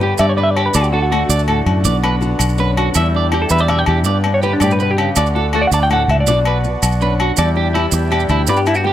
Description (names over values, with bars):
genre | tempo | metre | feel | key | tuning
highlife guitar band | 109 BPM (dotted quarters) | 12/8 | straight | unclear | A4 = 439 Hz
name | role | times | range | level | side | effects
semi-hollow electric guitar | melody | 0.0-8.9 s | D4 to A5 | -18 LUFS | equal | harmonic tremolo
nylon-string guitar | accompaniment | 0.0-8.9 s | E2 to G4 | -22 LUFS | left 6 dB | none
accordion | sustained chords | 0.0-8.9 s | A3 to G4 | -26 LUFS | right 3 dB | none
electric guitar at the edge of break-up | arpeggios | 0.0-8.9 s | E4 to E5 | -21 LUFS | right 5 dB | slapback echo
fingered electric bass | bass | 0.0-8.9 s | B1 to G2 | -17 LUFS | equal | none
agogo bells | percussion | 0.2-8.9 s | none | -23 LUFS | left 7 dB | none
maracas | percussion | 0.2-8.8 s | none | -23 LUFS | right 10 dB | none
room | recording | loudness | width
moderate spring reverb, RT60 1.4 s | none | -13 LUFS | side -12 dB against mid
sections
0.0-8.9 A section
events
clean electric guitar solo 0.0-8.9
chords
0.0 G; 0.8 D; 1.9 Bm; 3.0 Em7; 4.1 G; 5.2 D; 6.3 Bm; 7.4 Em7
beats
0.20 | 0.75 1.30 1.85 2.41 | 2.96 3.51 4.06 4.62 | 5.17 5.72 6.27 6.83 | 7.38 7.93 8.48